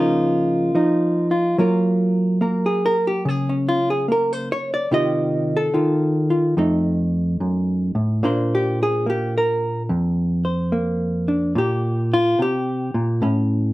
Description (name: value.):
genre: solo jazz.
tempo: 72 BPM.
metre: 4/4.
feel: swing 67% on 8ths.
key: Bb major.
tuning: A4 = 435 Hz.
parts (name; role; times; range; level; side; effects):
hollow-body jazz guitar; solo; 0.0-13.7 s; F2 to Eb5; -18 LUFS; equal; none.
room: moderate studio reverb, RT60 0.6 s.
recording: dark, warm production.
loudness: -18 LUFS.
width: side -18 dB against mid.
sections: 0.0-13.7 A section.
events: hollow-body jazz guitar solo 0.0-13.7.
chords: 0.0 Db69; 1.6 Gbmaj7; 4.9 Cmadd11; 6.6 F7b9; 8.2 Bb69; 13.2 A7.